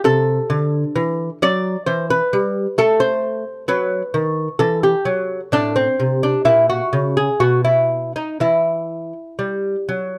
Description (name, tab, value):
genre	classical, baroque-style dance for lute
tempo	65 BPM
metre	3/4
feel	uneven beats, rubato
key	E minor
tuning	A4 = 440 Hz
part	lute	solo	0.0-10.2 s	A2 to D5	-19 LUFS	equal	none
room	studio reverb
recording	dry, close 1970s-style studio recording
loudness	-18 LUFS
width	mono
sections	0.0-10.2 A section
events	none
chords	0.1 Am/C; 2.8 B7/A; 4.6 Emadd9; 5.5 Amadd11; 6.5 F#/A#; 7.4 N.C.; 8.4 Em